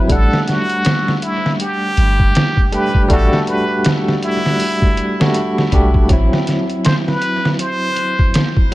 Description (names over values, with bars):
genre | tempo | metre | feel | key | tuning
trip hop | 80 BPM | 4/4 | swing 59% on 16ths | unclear | A4 = 439 Hz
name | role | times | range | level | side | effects
trumpet with plunger mute | melody | 0.0-8.7 s | E4 to C5 | -20 LUFS | equal | tape echo
barky tine electric piano | accompaniment | 0.0-8.7 s | F#3 to F#5 | -19 LUFS | equal | tremolo, tape echo
soft 808-style bass | bass | 0.1-6.3 s | G1 to B1 | -14 LUFS | equal | tube saturation
trip hop sampler-style drum kit | drums | 0.1-8.7 s | hi-hat, kick drum, snare drum | -16 LUFS | equal | small room reverb, dub echo
room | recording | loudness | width
little or no reverb | echo-heavy mix | -13 LUFS | side -17 dB against mid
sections
0.0-8.7 A section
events
none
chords
0.1 Em11; 6.1 D9 (rootless)